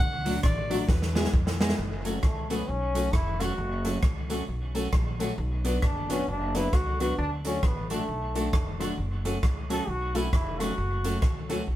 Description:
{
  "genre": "ska",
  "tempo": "134 BPM",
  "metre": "4/4",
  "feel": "swing 61% on 8ths",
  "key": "F# minor",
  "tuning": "A4 = 440 Hz",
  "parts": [
    { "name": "bright alto saxophone", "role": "melody", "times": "0.0-1.3 s", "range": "B4 to F#5", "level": "-33 LUFS", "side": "equal", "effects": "none" },
    { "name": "upright bass", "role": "bass", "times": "0.0-11.8 s", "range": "E#1 to E#2", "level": "-31 LUFS", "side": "equal", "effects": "none" },
    { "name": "clean electric guitar", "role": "accompaniment", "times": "0.3-11.7 s", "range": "F#3 to G#4", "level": "-34 LUFS", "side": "right 2 dB", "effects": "dub echo" },
    { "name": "dark upright piano", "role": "stabs", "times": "0.3-11.6 s", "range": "F#3 to B4", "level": "-33 LUFS", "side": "left 3 dB", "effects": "none" },
    { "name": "swinging big-band drum kit", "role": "drums", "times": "0.3-11.6 s", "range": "hi-hat, kick drum, rim click, snare drum", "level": "-28 LUFS", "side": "equal", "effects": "none" },
    { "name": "tambourine", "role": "percussion", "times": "0.3-11.6 s", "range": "none", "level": "-47 LUFS", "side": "right 3 dB", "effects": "none" },
    { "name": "bright trombone", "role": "melody", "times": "2.3-11.5 s", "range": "A3 to A4", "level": "-32 LUFS", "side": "equal", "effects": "none" }
  ],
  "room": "moderate studio reverb, RT60 0.6 s",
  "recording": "band playing live in one room",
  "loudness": "-25 LUFS",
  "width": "side -14 dB against mid",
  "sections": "0.0-1.8 A section; 1.8-11.8 B section",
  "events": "alto saxophone solo 0.0-1.8; drum fill 0.9-1.8",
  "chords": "0.0 D; 0.9 E; 1.8 F#m; 5.4 Bm; 7.2 D; 9.0 F#m"
}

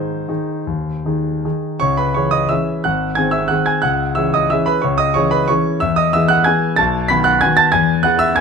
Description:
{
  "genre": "classical, piano waltz",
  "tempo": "146-197 BPM",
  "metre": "3/4",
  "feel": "rubato",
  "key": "C# minor",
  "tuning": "A4 = 438 Hz",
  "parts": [
    { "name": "clear concert grand piano", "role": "solo", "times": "0.0-8.4 s", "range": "G#1 to B6", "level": "-14 LUFS", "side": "equal", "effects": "none" }
  ],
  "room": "light reverb",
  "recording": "close, detailed microphones",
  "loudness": "-14 LUFS",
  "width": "side -5 dB against mid",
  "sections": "0.0-1.8 A section; 1.8-8.4 B section",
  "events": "none",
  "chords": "0.0 G#; 1.8 C#m; 2.9 G#7; 3.8 C#m; 5.8 E; 6.8 B7; 7.7 E"
}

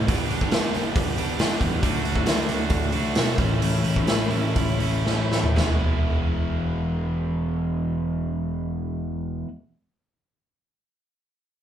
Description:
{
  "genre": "classic rock",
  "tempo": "116-138 BPM",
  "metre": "4/4",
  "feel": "straight",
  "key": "unclear",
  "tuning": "A4 = 440 Hz",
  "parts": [
    { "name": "crunchy overdriven guitar", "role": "riff", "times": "0.0-9.5 s", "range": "G2 to E4", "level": "-29 LUFS", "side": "left 5 dB", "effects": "none" },
    { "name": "crunchy overdriven guitar", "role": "riff", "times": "0.0-9.5 s", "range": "E2 to G4", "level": "-29 LUFS", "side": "right 6 dB", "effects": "none" },
    { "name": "growling picked electric bass", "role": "bass", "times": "0.0-9.4 s", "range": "E1 to B2", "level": "-28 LUFS", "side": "equal", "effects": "overdrive" },
    { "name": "raw garage drum kit", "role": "drums", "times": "0.1-5.7 s", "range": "hi-hat, kick drum, snare drum, toms", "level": "-23 LUFS", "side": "equal", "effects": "none" }
  ],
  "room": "wet studio reverb, RT60 0.5 s",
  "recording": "band playing live in one room",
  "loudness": "-21 LUFS",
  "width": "side -10 dB against mid",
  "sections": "0.0-5.5 A section; 5.5-9.7 B section",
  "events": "slowing down 1.8-5.5; drum fill 5.0-5.5",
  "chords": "0.1 G; 1.8 D; 3.4 A; 5.5 E"
}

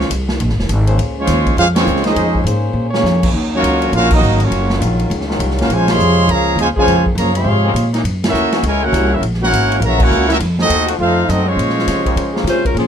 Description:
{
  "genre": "jazz, big band swing",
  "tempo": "204 BPM",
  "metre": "4/4",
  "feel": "swing 62% on 8ths",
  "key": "Bb minor",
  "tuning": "A4 = 440 Hz",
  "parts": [
    { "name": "clear trumpet section", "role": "melody", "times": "0.0-12.5 s", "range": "Ab3 to C6", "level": "-17 LUFS", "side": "equal", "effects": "none" },
    { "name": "warm trombone section", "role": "second line", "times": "0.0-12.5 s", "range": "C3 to Gb4", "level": "-18 LUFS", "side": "right 2 dB", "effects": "none" },
    { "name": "upright bass", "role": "bass", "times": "0.0-12.9 s", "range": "F1 to Db3", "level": "-17 LUFS", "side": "equal", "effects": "none" },
    { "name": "swinging big-band drum kit", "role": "drums", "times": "0.0-12.8 s", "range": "crash cymbal, hi-hat, kick drum, ride cymbal, snare drum", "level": "-21 LUFS", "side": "equal", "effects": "none" },
    { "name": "clear trombone section", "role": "sustained chords", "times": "0.9-12.7 s", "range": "Db3 to Db5", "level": "-22 LUFS", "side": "left 2 dB", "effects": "none" },
    { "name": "mellow saxophone section", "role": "melody", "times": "12.5-12.9 s", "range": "F3 to C5", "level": "-15 LUFS", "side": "left 2 dB", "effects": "none" }
  ],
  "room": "light reverb",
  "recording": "none",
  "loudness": "-12 LUFS",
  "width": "side -8 dB against mid",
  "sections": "0.0-12.8 A section",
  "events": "band accent 1.7, 4.1, 5.8, 8.2, 10.0; drum fill 2.8",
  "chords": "0.0 Bbm9; 3.3 Ebm9; 5.7 Bbm9; 8.0 Gb7; 10.4 F7b9; 11.6 Bbm9"
}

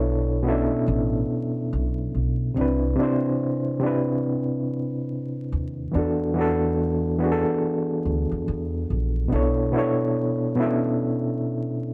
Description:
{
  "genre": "hip hop",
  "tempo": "71 BPM",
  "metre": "4/4",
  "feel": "swing 62% on 16ths",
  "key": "unclear",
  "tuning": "A4 = 441 Hz",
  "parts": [
    { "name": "overdriven reed electric piano", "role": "accompaniment", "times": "0.0-11.9 s", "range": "B2 to E5", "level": "-25 LUFS", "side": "equal", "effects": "fast tremolo, cassette tape" },
    { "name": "upright bass", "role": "bass", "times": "0.0-9.7 s", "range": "A1 to E2", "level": "-28 LUFS", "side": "equal", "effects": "none" }
  ],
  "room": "moderate small room reverb, RT60 0.5 s",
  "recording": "dark, warm production, vinyl crackle",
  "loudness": "-24 LUFS",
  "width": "mono",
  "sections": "0.0-11.9 A section",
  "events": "none",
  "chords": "0.0 Bm11; 2.6 Cmaj9; 5.9 E9sus4; 9.3 Bm11"
}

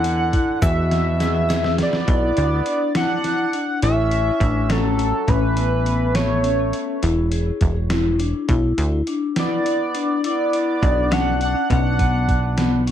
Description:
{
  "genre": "progressive instrumental, band music in an uneven meter",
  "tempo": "206 BPM (eighths)",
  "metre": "11/8",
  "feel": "straight",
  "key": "B dorian",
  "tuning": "A4 = 440 Hz",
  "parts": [
    { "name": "pulse-width lead", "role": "melody", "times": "0.0-12.8 s", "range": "A4 to F#5", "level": "-23 LUFS", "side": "equal", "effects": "chorus, tape echo" },
    { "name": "trombone with straight mute", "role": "second line", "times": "0.0-12.8 s", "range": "B2 to D4", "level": "-30 LUFS", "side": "right 4 dB", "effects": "plate reverb" },
    { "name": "vibraphone with medium hard mallets", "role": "arpeggios", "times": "0.0-12.9 s", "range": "B3 to G#4", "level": "-24 LUFS", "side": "left 4 dB", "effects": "plate reverb, tape echo" },
    { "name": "plucky analog bass", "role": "bass", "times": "0.0-12.9 s", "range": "E1 to E2", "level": "-20 LUFS", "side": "right 1 dB", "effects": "none" },
    { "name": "lo-fi sampler-style drum kit", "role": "drums", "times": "0.0-12.9 s", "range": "hi-hat, kick drum, snare drum", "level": "-23 LUFS", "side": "right 1 dB", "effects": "none" },
    { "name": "egg shaker", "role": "percussion", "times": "0.0-1.6 s", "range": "none", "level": "-45 LUFS", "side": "right 7 dB", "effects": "none" }
  ],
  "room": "moderate studio ambience, RT60 0.5 s",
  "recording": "none",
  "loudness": "-17 LUFS",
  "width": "side -10 dB against mid",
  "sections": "0.0-2.1 A section; 2.1-12.9 B section",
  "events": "drum fill 0.9-2.1",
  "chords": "0.0 E9; 2.1 Bm; 3.8 F#m7/A; 5.3 Aadd9; 7.0 E; 8.5 Bm"
}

